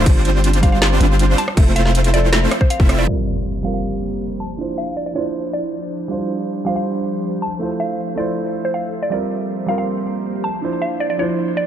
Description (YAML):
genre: future bass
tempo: 159 BPM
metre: 4/4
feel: half-time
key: F major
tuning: A4 = 440 Hz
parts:
  - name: mallet-like synth pluck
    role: melody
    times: 0.0-11.7 s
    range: C5 to A5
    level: -25 LUFS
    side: equal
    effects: chorus, sidechain pumping, ping-pong delay
  - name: dark concert grand piano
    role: accompaniment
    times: 0.0-11.7 s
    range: F3 to E5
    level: -23 LUFS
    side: right 3 dB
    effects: sidechain pumping, ping-pong delay
  - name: supersaw chords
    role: riff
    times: 0.0-3.1 s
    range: G3 to E5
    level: -20 LUFS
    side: right 1 dB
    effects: sidechain pumping
  - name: long sustained 808-style bass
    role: bass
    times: 0.0-3.1 s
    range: F1 to G1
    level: -16 LUFS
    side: equal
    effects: sidechain pumping
  - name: electronic kick drum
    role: drums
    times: 0.1-2.9 s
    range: none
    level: -14 LUFS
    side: equal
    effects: none
  - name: trap drum kit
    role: drums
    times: 0.1-3.2 s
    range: crash cymbal, hi-hat, rim click, snare drum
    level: -22 LUFS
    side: equal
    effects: low-pass filter on hats, low-pass filter on snare, low-pass filter on cymbals
  - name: ethereal airy pad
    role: sustained chords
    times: 3.8-11.7 s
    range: F3 to E5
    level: -27 LUFS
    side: left 1 dB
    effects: ensemble chorus, built-in reverb, sidechain pumping
  - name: impact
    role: sound effects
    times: 3.1-4.6 s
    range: none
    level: -25 LUFS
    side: equal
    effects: none
room: light reverb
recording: dark, warm production, low-pass filter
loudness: -16 LUFS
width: side -10 dB against mid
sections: 0.0-3.1 A section; 3.1-11.7 B section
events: drop 0.0-3.1; impact 3.1-4.6; filter sweep 3.1-11.7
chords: 0.1 G7sus4; 1.4 Fmaj7; 3.1 C7sus4; 4.4 Dm9; 6.1 G7sus4; 7.4 Fmaj7; 9.1 C7sus4; 10.4 Dm9